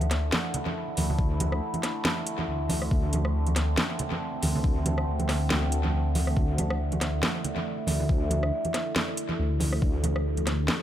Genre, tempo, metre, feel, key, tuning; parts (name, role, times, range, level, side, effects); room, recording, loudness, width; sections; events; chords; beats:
deep dubstep; 139 BPM; 4/4; swing 56% on 16ths, half-time; A4 = 440 Hz
overtone-sweeping drone; sustained chords; 0.0-10.8 s; D3 to G4; -32 LUFS; right 1 dB; chorus, built-in reverb
dark detuned saw bass; bass; 0.0-10.7 s; D2; -27 LUFS; equal
garage drum kit; drums; 0.0-10.8 s; hi-hat, rim click, snare drum; -31 LUFS; equal; dub echo
congas; percussion; 0.0-10.8 s; -33 LUFS; right 2 dB; dub echo
electronic kick drum; drums; 1.2-9.9 s; -25 LUFS; equal
light reverb; echo-heavy mix; -24 LUFS; side -11 dB against mid
0.0-10.8 A section
0.0 D5
0.33 0.76 | 1.19 1.62 2.05 2.48 | 2.92 3.35 3.78 4.21 | 4.64 5.07 5.50 5.94 | 6.37 6.80 7.23 7.66 | 8.10 8.53 8.96 9.39 | 9.82 10.25 10.69